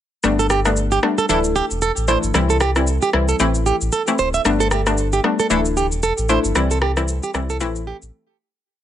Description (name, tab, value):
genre	afrobeats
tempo	114 BPM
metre	4/4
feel	swing 58% on 16ths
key	C major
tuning	A4 = 445 Hz
part	analog pluck	accompaniment	0.2-8.1 s	E3 to E4	-20 LUFS	left 3 dB	chorus, plate reverb
part	sub bass with octave	bass	0.2-8.1 s	D1 to C2	-22 LUFS	equal	none
part	electronic shaker and rim click	drums	0.2-8.1 s	none	-24 LUFS	equal	none
part	flamenco guitar	riff	0.4-8.0 s	G4 to E5	-21 LUFS	right 5 dB	tape echo
room	light reverb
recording	nothing above 10.4 kHz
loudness	-16 LUFS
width	side -11 dB against mid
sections	0.2-8.7 breakdown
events	fade-out 6.6-8.7; break 8.1-8.7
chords	0.2 Gadd9; 1.3 Dsus2; 2.3 C; 3.4 Am; 4.5 Gadd9; 5.5 Dsus2; 6.6 C; 7.6 Am